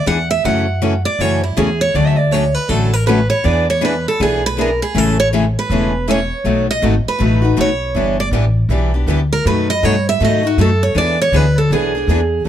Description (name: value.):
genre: acoustic string swing (jazz manouche).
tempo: 160 BPM.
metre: 4/4.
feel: swing 62% on 8ths.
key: unclear.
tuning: A4 = 440 Hz.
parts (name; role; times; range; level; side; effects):
picked steel-string acoustic guitar; melody; 0.0-12.4 s; E4 to F#5; -17 LUFS; right 3 dB; plate reverb.
picked steel-string acoustic guitar; accompaniment; 0.1-12.2 s; B2 to G#4; -19 LUFS; left 6 dB; none.
upright bass; bass; 0.1-12.5 s; E1 to G#2; -17 LUFS; equal; none.
picked steel-string acoustic guitar; accompaniment; 0.4-12.5 s; B2 to B4; -24 LUFS; right 6 dB; none.
room: light reverb.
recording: dark, warm production.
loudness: -13 LUFS.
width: side -10 dB against mid.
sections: 0.0-6.5 A section; 6.5-12.5 A section.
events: steel-string acoustic guitar solo 0.0-12.5.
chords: 0.4 F#m7; 1.9 Dmaj7; 3.4 E7; 4.9 Amaj7; 6.5 B7; 8.0 Em7; 9.5 B7; 11.0 E7.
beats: 0.06 | 0.43 0.81 1.19 1.56 | 1.94 2.32 2.69 3.07 | 3.44 3.82 4.20 4.57 | 4.95 5.32 5.70 6.08 | 6.45 6.83 7.20 7.58 | 7.95 8.33 8.70 9.08 | 9.45 9.83 10.20 10.58 | 10.95 11.33 11.70 12.07 | 12.45.